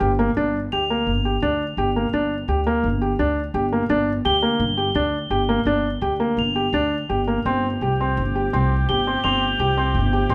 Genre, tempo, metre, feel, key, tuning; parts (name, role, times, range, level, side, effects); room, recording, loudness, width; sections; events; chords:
contemporary instrumental, chamber music in an uneven meter; 169 BPM; 5/4; straight; G minor; A4 = 440 Hz
mellow woodwind section; sustained chords; 0.0-0.3, 7.5-10.3 s; F3 to G4; -32 LUFS; equal
felt-muted upright piano; arpeggios; 0.0-10.3 s; Bb3 to G4; -24 LUFS; equal
upright bass; bass; 0.0-10.3 s; G1 to D2; -26 LUFS; equal
crotales; texture; 0.7-10.2 s; F7 to G7; -30 LUFS; equal
moderate recital hall reverb, RT60 1.5 s; -21 LUFS; mono
0.4-10.3 A section
0.4 Gm7; 7.5 Fadd9/G